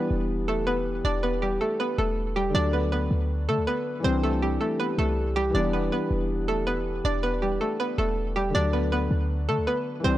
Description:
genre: hip hop, trap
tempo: 160 BPM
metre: 4/4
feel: half-time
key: E minor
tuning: A4 = 440 Hz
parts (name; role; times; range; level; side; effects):
- hollow square pluck; melody; 0.0-10.2 s; G3 to D5; -26 LUFS; right 1 dB; chorus
- felt-muted upright piano; accompaniment; 0.0-10.2 s; D3 to D4; -30 LUFS; left 2 dB; none
- clean 808-style bass; bass; 0.1-10.2 s; E1 to D3; -28 LUFS; equal; none
room: light reverb, small room ambience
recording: dry, gritty hardware recording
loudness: -23 LUFS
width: side -14 dB against mid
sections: 0.0-10.2 A section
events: none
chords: 0.0 Em7; 2.5 D; 4.0 Cadd9; 5.5 Em7; 8.5 D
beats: 0.29 0.67 | 1.04 1.42 1.79 2.17 | 2.54 2.92 3.29 3.67 | 4.04 4.42 4.79 5.17 | 5.54 5.92 6.29 6.67 | 7.04 7.42 7.79 8.17 | 8.54 8.92 9.29 9.67 | 10.04

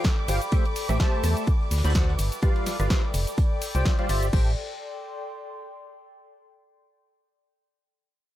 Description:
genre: piano house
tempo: 126 BPM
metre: 4/4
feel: swing 56% on 16ths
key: A minor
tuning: A4 = 439 Hz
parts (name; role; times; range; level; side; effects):
- muted symphonic violin section; sustained chords; 0.0-4.3 s; D6; -39 LUFS; right 2 dB; sidechain pumping
- percussive organ stab; riff; 0.0-4.5 s; D3 to B5; -30 LUFS; equal; ensemble chorus, sidechain pumping, digital delay
- electronic kick drum; drums; 0.0-4.4 s; none; -23 LUFS; equal; none
- house drum kit; drums; 0.0-4.4 s; crash cymbal, hi-hat, ride cymbal, rim click, shaker, snare drum; -32 LUFS; left 1 dB; none
- vintage brush drum kit; drums; 0.0-4.2 s; hi-hat, snare drum; -44 LUFS; right 3 dB; none
- warbly tape-like pad; texture; 0.0-6.2 s; A4 to C6; -36 LUFS; left 2 dB; chorus, built-in reverb, sidechain pumping
- organ-like FM bass; bass; 0.3-4.6 s; F1 to E2; -24 LUFS; equal; sidechain pumping
room: studio ambience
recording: none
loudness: -22 LUFS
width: side -14 dB against mid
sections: 0.0-4.3 A section; 4.3-6.2 B section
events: drop 0.0-4.3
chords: 0.0 Fsus2; 0.5 Am7; 1.5 D7; 2.2 G7; 3.1 Fsus2; 3.9 G7sus4; 4.3 Am7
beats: 0.05 | 0.52 1.00 1.47 1.95 | 2.43 2.90 3.38 3.85 | 4.33 4.81 5.28 5.76

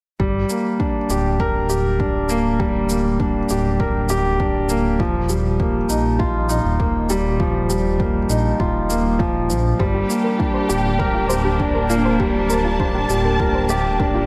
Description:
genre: piano and strings electronica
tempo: 100 BPM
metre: 4/4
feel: straight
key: G minor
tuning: A4 = 436 Hz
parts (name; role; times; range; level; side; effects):
- felt-muted upright piano; riff; 0.2-14.3 s; F3 to Bb4; -22 LUFS; equal; diffuse ambient delay
- dark detuned saw bass; bass; 0.2-14.3 s; D1 to Bb1; -25 LUFS; equal; sidechain pumping
- electronic kick drum; drums; 0.2-14.1 s; none; -26 LUFS; equal; overdrive, small room reverb
- shaker; drums; 0.5-13.8 s; none; -35 LUFS; equal; overdrive, small room reverb
- muted studio string section; sustained chords; 9.8-14.3 s; Bb3 to A5; -25 LUFS; equal; sidechain pumping
- soft round pluck; arpeggios; 9.8-14.2 s; F4 to C5; -29 LUFS; equal; chorus, sidechain pumping, diffuse ambient delay
room: wet lush hall reverb, RT60 1.8 s, studio reverb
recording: dreamy mix soaked in reverb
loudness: -19 LUFS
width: mono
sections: 0.2-14.3 A section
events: none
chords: 0.2 Gm; 5.0 Ebadd9; 9.8 Gm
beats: | 0.20 0.80 1.40 2.00 | 2.60 3.20 3.80 4.40 | 5.00 5.60 6.20 6.80 | 7.40 8.00 8.60 9.20 | 9.80 10.40 11.00 11.60 | 12.20 12.80 13.40 14.00

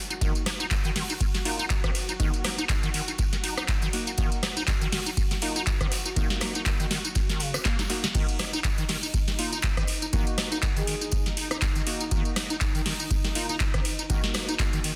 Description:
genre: acid house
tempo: 121 BPM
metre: 4/4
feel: swing 56% on 16ths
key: Eb minor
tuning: A4 = 439 Hz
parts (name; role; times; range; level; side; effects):
- string machine, full ensemble; sustained chords; 0.0-15.0 s; Eb4 to Gb4; -41 LUFS; equal; ensemble chorus, sidechain pumping
- acid bass, square; riff; 0.1-14.9 s; Db3 to Eb4; -36 LUFS; equal; tube saturation, ensemble chorus, vintage 12-bit sampler grit, dub echo
- booming analog drum machine; drums; 0.1-15.0 s; crash cymbal, handclaps, hi-hat, ride cymbal, rim click, snare drum, tambourine; -32 LUFS; equal; none
- deep mellow chord stab; stabs; 0.2-15.0 s; Bb3 to Gb4; -40 LUFS; equal; chorus, cassette tape, dub echo
- electronic kick drum; drums; 0.2-14.7 s; none; -30 LUFS; equal; none
- gated 80s drum kit; drums; 0.2-15.0 s; hi-hat, snare drum, tambourine; -42 LUFS; equal; none
- breathy flute-like synth lead; melody; 10.8-11.3 s; Ab4; -40 LUFS; equal; subtle chorus, dub echo
room: light reverb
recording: dense, heavily limited modern master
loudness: -27 LUFS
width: mono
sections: 0.0-15.0 A section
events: drum fill 7.7-8.1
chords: 0.0 Ebm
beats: | 0.21 0.71 1.21 1.70 | 2.20 2.69 3.19 3.68 | 4.18 4.68 5.17 5.67 | 6.16 6.66 7.16 7.65 | 8.15 8.64 9.14 9.63 | 10.13 10.63 11.12 11.62 | 12.11 12.61 13.11 13.60 | 14.10 14.59

